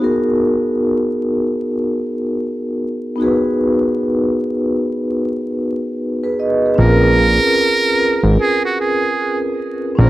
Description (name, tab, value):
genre	lo-fi hip hop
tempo	75 BPM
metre	4/4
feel	swing 62% on 16ths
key	unclear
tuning	A4 = 440 Hz
part	vibraphone with soft mallets	accompaniment	0.0-10.1 s	Cb4 to Eb5	-16 LUFS	equal	none
part	trumpet with metal mute	melody	6.8-10.1 s	Gb4 to Bb4	-17 LUFS	right 2 dB	none
part	fat analog bass	bass	6.8-10.1 s	Ab1 to Bb1	-12 LUFS	equal	none
room	light reverb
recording	vinyl crackle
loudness	-14 LUFS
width	side -16 dB against mid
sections	0.0-6.8 A section; 6.8-10.1 B section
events	none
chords	0.0 Abm7; 6.8 Bbm7